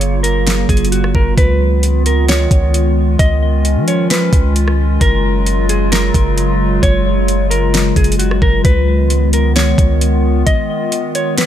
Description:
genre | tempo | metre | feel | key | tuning
hip hop, atmospheric cloud-rap | 132 BPM | 4/4 | half-time | unclear | A4 = 444 Hz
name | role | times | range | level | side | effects
mellow electric guitar | melody | 0.0-11.5 s | F#4 to D#5 | -20 LUFS | equal | ping-pong delay
warbly tape-like pad | sustained chords | 0.0-11.5 s | C#3 to E#4 | -17 LUFS | equal | chorus, built-in reverb, sidechain pumping
long sustained 808-style bass | bass | 0.0-10.4 s | F#1 to E#3 | -14 LUFS | equal | none
smooth R&B drum kit | drums | 0.0-11.5 s | hi-hat, kick drum, rim click, snare drum | -15 LUFS | equal | none
room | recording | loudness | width
digital ambience | none | -11 LUFS | side -10 dB against mid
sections
0.0-1.4 A section; 1.4-11.5 B section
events
none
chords
0.0 F#maj7; 1.4 C#9; 5.0 F#maj7; 8.6 C#9

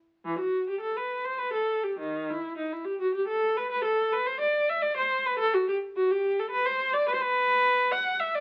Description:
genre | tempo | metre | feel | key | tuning
classical, baroque-style suite movement for unaccompanied viola | 106 BPM | 3/4 | rubato | unclear | A4 = 441 Hz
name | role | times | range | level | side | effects
rich viola | solo | 0.2-8.4 s | D#3 to F#5 | -27 LUFS | equal | none
room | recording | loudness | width
moderate studio reverb, RT60 0.8 s | very old 78 rpm record, vinyl crackle | -27 LUFS | mono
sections
0.2-8.4 A section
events
none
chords
none

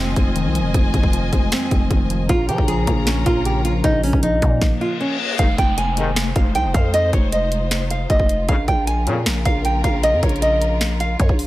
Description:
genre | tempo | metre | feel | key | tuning
hip hop, trap | 155 BPM | 4/4 | half-time | F minor | A4 = 440 Hz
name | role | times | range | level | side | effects
warbly lo-fi synth keys | accompaniment | 0.0-5.4 s | F2 to Db4 | -23 LUFS | equal | chorus
warm studio string section | sustained chords | 0.0-11.5 s | Db3 to Bb5 | -28 LUFS | left 2 dB | none
growling 808-style bass | bass | 0.0-11.5 s | F1 to F3 | -21 LUFS | equal | none
trap drum kit | drums | 0.2-11.5 s | finger snaps, hi-hat, kick drum, snare drum | -19 LUFS | equal | none
nylon-string guitar | melody | 2.3-11.4 s | Db4 to Ab5 | -21 LUFS | right 1 dB | tape echo
reverse cymbal and downlifter | sound effects | 4.8-8.5 s | none | -28 LUFS | left 3 dB | none
dark brass ensemble | stabs | 5.4-6.1, 8.5-9.2 s | F2 to Eb3 | -26 LUFS | left 4 dB | none
room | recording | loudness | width
digital ambience | none | -16 LUFS | side -16 dB against mid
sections
0.0-5.4 A section; 5.4-11.5 B section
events
break 0.0-2.3; stop 4.6-5.4; reverse cymbal 4.8-5.4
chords
0.0 Fm7; 2.3 Bbm; 5.4 Fm7; 8.5 Bbm

